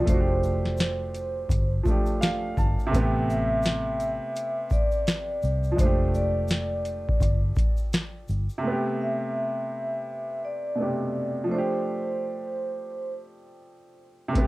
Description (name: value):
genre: lo-fi hip hop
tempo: 84 BPM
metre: 4/4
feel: swing 61% on 16ths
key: unclear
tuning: A4 = 441 Hz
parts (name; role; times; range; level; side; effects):
- vibraphone with medium mallets; melody; 0.0-13.1 s; C5 to E5; -30 LUFS; equal; none
- clear upright piano; accompaniment; 0.0-14.5 s; B2 to A5; -29 LUFS; right 1 dB; none
- vintage muted fingered electric bass; bass; 0.1-8.5 s; F1 to C2; -27 LUFS; equal; none
- booming analog drum machine; drums; 0.1-8.5, 14.4-14.5 s; hi-hat, kick drum, shaker, snare drum; -25 LUFS; equal; none
- egg shaker; percussion; 0.1-8.6 s; none; -55 LUFS; left 4 dB; none
room: light reverb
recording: cassette tape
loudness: -24 LUFS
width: side -19 dB against mid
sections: 0.0-8.6 A section; 8.6-14.5 B section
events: none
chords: 0.1 F69; 2.9 Am9; 5.8 F69; 8.6 Am9; 11.5 F69